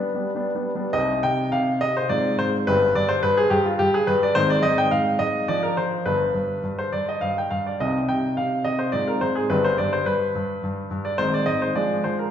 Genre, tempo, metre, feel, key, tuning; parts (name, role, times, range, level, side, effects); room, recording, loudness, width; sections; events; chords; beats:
classical-period piano sonatina; 106 BPM; 3/4; rubato; A4 = 440 Hz
clear baby grand piano; solo; 0.0-12.3 s; G1 to G5; -20 LUFS; equal
wet recital hall reverb, RT60 1.7 s; heard from further back in the room, nothing above 7.8 kHz; -20 LUFS; side -9 dB against mid
0.9-12.3 A section
0.0 G; 0.9 Cm; 2.1 Fm/Ab; 2.7 G5; 4.4 Ab; 5.5 Bbadd9/F; 6.0 G; 7.8 Cm; 8.9 Fm/Ab; 9.5 G; 11.2 Ab; 11.8 Ddim/F
0.34 | 0.94 1.52 2.10 | 2.67 3.23 3.80 | 4.35 4.91 5.47 | 6.05 6.62 7.21 | 7.79 8.37 8.93 | 9.50 10.06 10.63 | 11.19 11.75